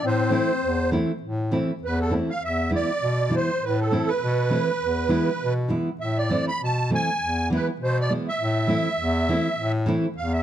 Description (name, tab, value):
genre	balkan folk, Balkan wedding band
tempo	100 BPM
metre	2/4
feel	swing 55% on 16ths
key	A harmonic minor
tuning	A4 = 440 Hz
part	musette accordion	melody	0.0-10.4 s	A4 to B5	-25 LUFS	right 2 dB	none
part	warm clarinet	second line	0.0-0.9 s	C4	-29 LUFS	left 10 dB	none
part	clear bass clarinet	bass	0.0-10.4 s	E2 to B2	-26 LUFS	left 1 dB	none
part	nylon-string guitar	accompaniment	0.3-10.1 s	E3 to E4	-26 LUFS	right 1 dB	none
room	light reverb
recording	close, detailed microphones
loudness	-21 LUFS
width	side -11 dB against mid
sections	0.0-1.2 A section; 1.2-10.4 B section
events	accordion solo 1.2-10.4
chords	0.0 Am; 2.4 E; 3.6 Am; 4.8 E; 6.0 Am; 7.2 E; 8.4 Am